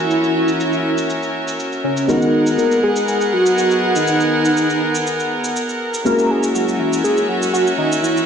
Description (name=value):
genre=nu-disco, nu disco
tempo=121 BPM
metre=4/4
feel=straight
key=G# minor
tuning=A4 = 438 Hz
part: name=wide unison lead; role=melody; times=0.0-8.3 s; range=C#4 to A#4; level=-18 LUFS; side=equal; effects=digital delay
part: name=dark grand piano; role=accompaniment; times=0.0-8.3 s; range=G#3 to A#4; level=-23 LUFS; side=left 1 dB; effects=tape echo
part: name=warm chamber violin section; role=sustained chords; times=0.0-8.3 s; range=B3 to F#5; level=-20 LUFS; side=equal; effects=low-pass filter
part: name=cabasa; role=drums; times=0.1-8.3 s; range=none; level=-29 LUFS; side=right 2 dB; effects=overdrive, low-pass filter on perc, low-pass filter on room
room=moderate digital room reverb, RT60 1.1 s, small room ambience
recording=played on a big sound system in a bare room, stone room reverb, nothing above 10.3 kHz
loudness=-15 LUFS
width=side -7 dB against mid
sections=0.0-8.3 A section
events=none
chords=0.0 F#7; 2.1 G#m9; 6.1 F#7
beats=| 0.10 0.60 1.09 1.59 | 2.09 2.58 3.08 3.57 | 4.07 4.57 5.06 5.56 | 6.05 6.55 7.04 7.54 | 8.04